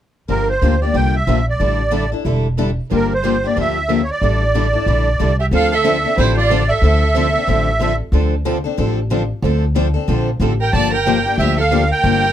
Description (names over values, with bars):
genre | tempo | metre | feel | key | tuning
acoustic string swing (jazz manouche) | 184 BPM | 4/4 | swing 60% on 8ths | D minor | A4 = 439 Hz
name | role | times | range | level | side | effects
musette accordion | melody | 0.3-8.0, 10.6-12.3 s | Bb4 to A5 | -18 LUFS | right 2 dB | none
picked steel-string acoustic guitar | accompaniment | 0.3-12.2 s | D3 to A4 | -21 LUFS | left 8 dB | none
picked steel-string acoustic guitar | accompaniment | 0.3-12.2 s | D3 to A4 | -25 LUFS | right 8 dB | none
upright bass | bass | 0.3-12.3 s | E1 to D2 | -18 LUFS | equal | none
rich violin | second line | 5.4-8.0, 10.6-12.3 s | E4 to D5 | -22 LUFS | right 6 dB | none
room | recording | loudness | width
light reverb | close, detailed microphones | -14 LUFS | side -11 dB against mid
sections
0.3-5.5 A section; 5.5-12.3 B section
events
none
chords
0.3 Gm7; 1.6 A7sus4; 2.9 Gm7; 4.2 A7sus4; 5.5 Dm9; 10.7 Gm9